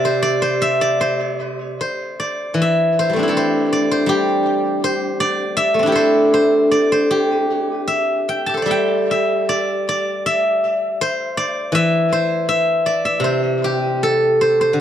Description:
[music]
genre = chinese traditional, Chinese solo plucked strings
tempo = 73-82 BPM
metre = 2/4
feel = rubato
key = C gong mode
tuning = A4 = 440 Hz
[part]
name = steel-string zither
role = solo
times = 0.0-14.8 s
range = C3 to A5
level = -15 LUFS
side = equal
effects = tape echo
[sound]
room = little or no reverb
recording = dry, close 1970s-style studio recording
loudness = -15 LUFS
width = side -10 dB against mid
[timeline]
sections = 0.0-2.6 A section; 2.6-14.8 B section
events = none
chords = none

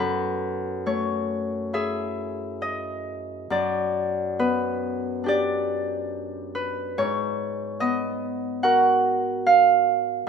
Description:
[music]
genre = classical, solo harp piece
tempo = 66-76 BPM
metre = 4/4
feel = rubato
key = unclear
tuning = A4 = 443 Hz
[part]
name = Celtic harp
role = solo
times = 0.0-10.3 s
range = F#2 to F#5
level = -22 LUFS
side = right 1 dB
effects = none
[sound]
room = moderate recital hall reverb, RT60 1.7 s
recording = minimal, uncompressed stereo recording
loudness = -22 LUFS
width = side -6 dB against mid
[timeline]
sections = 0.0-10.3 A section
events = none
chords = 0.0 F#m11; 3.5 Gmaj7/F#; 7.0 G#m11

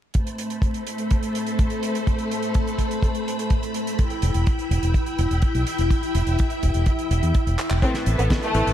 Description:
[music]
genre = italo disco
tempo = 125 BPM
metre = 4/4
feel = straight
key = A minor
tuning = A4 = 437 Hz
[part]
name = string machine, full ensemble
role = sustained chords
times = 0.1-8.7 s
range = A3 to B5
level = -26 LUFS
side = left 1 dB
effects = ensemble chorus
[part]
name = damped 70s drum kit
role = drums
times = 0.1-8.7 s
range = handclaps, hi-hat, snare drum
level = -33 LUFS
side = right 2 dB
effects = gated reverb
[part]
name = kick drum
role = drums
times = 0.1-8.4 s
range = none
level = -21 LUFS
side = equal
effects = none
[part]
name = fingered electric bass with an envelope filter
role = bass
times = 4.2-8.7 s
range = E1 to E2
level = -21 LUFS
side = equal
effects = none
[part]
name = warm studio violin section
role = melody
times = 7.8-8.7 s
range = A3 to C4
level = -24 LUFS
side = equal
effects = none
[part]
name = bright electric grand piano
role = stabs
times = 7.8-8.7 s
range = A2 to B4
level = -27 LUFS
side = left 2 dB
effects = low-pass filter
[sound]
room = light reverb, studio reverb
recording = vinyl crackle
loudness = -20 LUFS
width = side -11 dB against mid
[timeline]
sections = 0.1-7.8 A section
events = drum fill 7.6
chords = 0.1 Amadd9; 4.0 Em; 7.8 Amadd9

